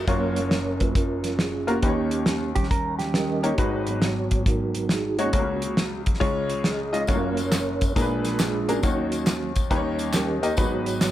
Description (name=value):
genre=uptempo gospel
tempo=137 BPM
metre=4/4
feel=swing 66% on 8ths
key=F# major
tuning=A4 = 441 Hz
part: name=clear grand piano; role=accompaniment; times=0.0-11.1 s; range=F#1 to D#5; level=-27 LUFS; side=left 2 dB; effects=none
part: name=mellow tonewheel organ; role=sustained chords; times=0.0-11.1 s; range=G#2 to E#5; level=-27 LUFS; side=right 3 dB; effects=slow rotary speaker, chorus vibrato
part: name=warm soul drum kit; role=drums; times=0.1-11.1 s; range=hi-hat, kick drum, snare drum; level=-25 LUFS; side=equal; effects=none
part: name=mellow electric guitar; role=second line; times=2.6-3.5 s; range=G4 to A#4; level=-30 LUFS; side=right 5 dB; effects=phaser
part: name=tambourine and handclaps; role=percussion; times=7.1-11.1 s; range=none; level=-34 LUFS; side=left 1 dB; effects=none
room=light reverb, small room ambience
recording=none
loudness=-21 LUFS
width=side -13 dB against mid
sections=0.1-11.1 A section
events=tonewheel organ solo 0.1-11.1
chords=0.1 F#maj7; 1.8 D#7; 3.6 G#m7; 5.3 F#/C#; 6.2 C#; 7.1 F#maj7; 8.0 A#7b9; 8.8 D#m7; 9.7 D#7; 10.6 G#m7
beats=| 0.07 0.51 0.95 1.39 | 1.83 2.27 2.71 3.15 | 3.58 4.02 4.46 4.90 | 5.34 5.78 6.21 6.65 | 7.09 7.53 7.96 8.40 | 8.84 9.27 9.71 10.15 | 10.58 11.02